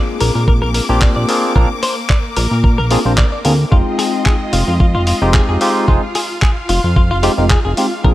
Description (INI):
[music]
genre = nu-disco, nu disco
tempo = 111 BPM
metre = 4/4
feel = swing 54% on 16ths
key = F dorian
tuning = A4 = 440 Hz
[part]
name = barky tine electric piano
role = accompaniment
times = 0.0-8.1 s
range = Ab3 to G5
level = -18 LUFS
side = equal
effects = phaser, sidechain pumping, analog delay
[part]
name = rich studio string section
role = sustained chords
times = 0.0-8.1 s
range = Ab3 to D6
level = -24 LUFS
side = left 1 dB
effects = sidechain pumping
[part]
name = direct-recorded clean electric guitar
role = riff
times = 0.2-8.1 s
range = F4 to D5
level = -22 LUFS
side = left 3 dB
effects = lush chorus, low-pass filter, analog delay
[part]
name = fat analog bass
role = bass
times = 0.2-8.1 s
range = F1 to Bb2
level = -16 LUFS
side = equal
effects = none
[part]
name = dusty soul sampler-style drum kit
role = drums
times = 0.2-7.9 s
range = handclaps, hi-hat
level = -22 LUFS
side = equal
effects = none
[part]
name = electronic kick drum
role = drums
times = 0.5-8.1 s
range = none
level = -13 LUFS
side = equal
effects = none
[sound]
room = light reverb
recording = none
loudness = -12 LUFS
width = side -15 dB against mid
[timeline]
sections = 0.0-8.1 A section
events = none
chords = 0.0 Bb7; 3.7 Fm7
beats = 0.48 1.02 | 1.56 2.10 2.64 3.18 | 3.72 4.26 4.80 5.34 | 5.88 6.42 6.96 7.50 | 8.05